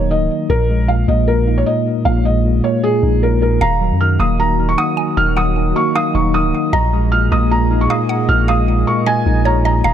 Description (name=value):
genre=hip hop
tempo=154 BPM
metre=4/4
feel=half-time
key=Eb minor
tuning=A4 = 440 Hz
part: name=felt-muted upright piano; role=melody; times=0.0-9.9 s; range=Ab4 to F6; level=-18 LUFS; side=right 1 dB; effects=low-pass filter, ping-pong delay
part: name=mellow tine electric piano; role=accompaniment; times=0.0-9.9 s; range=Bb2 to Eb4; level=-18 LUFS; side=equal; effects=medium stereo tremolo, low-pass filter
part: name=long sustained 808-style bass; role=bass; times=0.0-9.9 s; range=Db1 to Gb2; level=-16 LUFS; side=equal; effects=none
part: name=mallet-like synth pluck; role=second line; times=3.6-9.9 s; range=Db5 to Ab5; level=-25 LUFS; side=right 1 dB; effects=chorus, phaser, ping-pong delay
part: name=warbly tape-like pad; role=sustained chords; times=3.8-9.9 s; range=Gb3 to Eb5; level=-26 LUFS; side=right 2 dB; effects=chorus, built-in reverb
room=digital ambience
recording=none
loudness=-13 LUFS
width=side -10 dB against mid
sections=0.0-3.6 A section; 3.6-9.9 B section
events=none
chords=0.5 Bb7sus4; 3.6 Ebmadd9; 6.7 Bb7sus4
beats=0.11 | 0.50 0.89 1.28 1.67 | 2.06 2.44 2.83 3.23 | 3.61 4.00 4.39 4.78 | 5.17 5.56 5.95 6.34 | 6.73 7.12 7.51 7.90 | 8.29 8.68 9.07 9.46 | 9.85